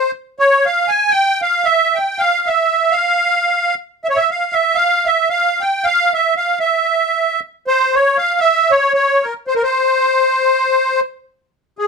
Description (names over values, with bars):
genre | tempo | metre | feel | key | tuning
balkan folk | 232 BPM (eighths) | 7/8 | straight | F harmonic minor | A4 = 440 Hz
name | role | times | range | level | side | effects
musette accordion | solo | 0.0-11.9 s | Ab4 to Ab5 | -13 LUFS | right 1 dB | none
room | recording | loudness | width
light reverb | close, detailed microphones | -13 LUFS | side -5 dB against mid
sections
0.0-11.3 A section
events
none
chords
none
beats
0.14 | 0.40 0.66 0.92 1.18 1.44 1.70 1.96 | 2.22 2.48 2.74 3.00 3.26 3.52 3.78 | 4.04 4.30 4.56 4.82 5.08 5.34 5.60 | 5.86 6.11 6.37 6.63 6.89 7.15 7.41 | 7.67 7.92 8.18 8.44 8.70 8.96 9.21 | 9.47 9.73 9.98 10.24 10.50 10.76 11.01 | 11.27 11.53 11.79